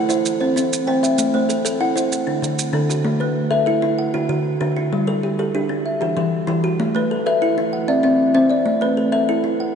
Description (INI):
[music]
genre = southern african traditional, mbira-style interlocking cycle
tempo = 128 BPM (dotted quarters)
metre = 12/8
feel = straight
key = A dorian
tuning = A4 = 443 Hz
[part]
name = kalimba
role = arpeggios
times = 0.0-9.8 s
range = D3 to F#5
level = -19 LUFS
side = left 3 dB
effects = none
[part]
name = kalimba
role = arpeggios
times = 0.0-9.8 s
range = D3 to G5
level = -21 LUFS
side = right 4 dB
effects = none
[part]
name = maracas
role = percussion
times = 0.1-3.0 s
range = none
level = -28 LUFS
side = right 7 dB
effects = none
[sound]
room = wet cathedral reverb, RT60 6.1 s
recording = in a vast, echoing space, nothing above 10.4 kHz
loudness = -17 LUFS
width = side -7 dB against mid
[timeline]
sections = 0.0-3.1 A section; 3.1-9.8 B section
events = none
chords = 0.3 C; 1.2 Am; 2.1 D; 3.1 A5; 4.0 D; 4.9 G5; 5.9 Em; 6.8 A5; 7.7 C; 8.7 Am